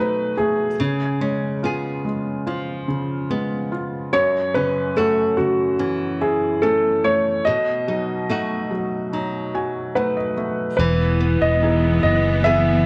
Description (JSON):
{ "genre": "pop", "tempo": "72 BPM", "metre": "4/4", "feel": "straight", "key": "E major", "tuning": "A4 = 442 Hz", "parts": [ { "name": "warm baby grand piano", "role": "melody", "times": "0.0-12.9 s", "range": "F#4 to E5", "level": "-23 LUFS", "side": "equal", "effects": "slapback echo" }, { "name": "felt-muted upright piano", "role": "accompaniment", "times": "0.0-12.9 s", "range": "F#2 to G#5", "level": "-28 LUFS", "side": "equal", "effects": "none" }, { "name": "flamenco guitar", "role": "arpeggios", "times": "0.0-12.9 s", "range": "F#2 to G#4", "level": "-30 LUFS", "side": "equal", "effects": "none" }, { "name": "bright studio string section", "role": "sustained chords", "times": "10.8-12.9 s", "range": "E3 to B3", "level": "-26 LUFS", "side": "equal", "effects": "none" }, { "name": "fretless electric bass", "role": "bass", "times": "10.8-12.8 s", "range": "E1 to F#1", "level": "-22 LUFS", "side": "equal", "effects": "none" } ], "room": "moderate echo chamber reverb, RT60 2.2 s", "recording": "none", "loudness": "-21 LUFS", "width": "mono", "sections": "0.0-10.8 A section; 10.8-12.9 B section", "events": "felt piano fill 9.1-10.8", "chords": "0.0 B7; 0.8 C#7; 4.1 F#m7; 7.5 B7; 10.8 Emaj7", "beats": "| 0.79 1.62 2.46 3.29 | 4.12 4.96 5.79 6.62 | 7.46 8.29 9.12 9.96 | 10.79 11.62 12.46" }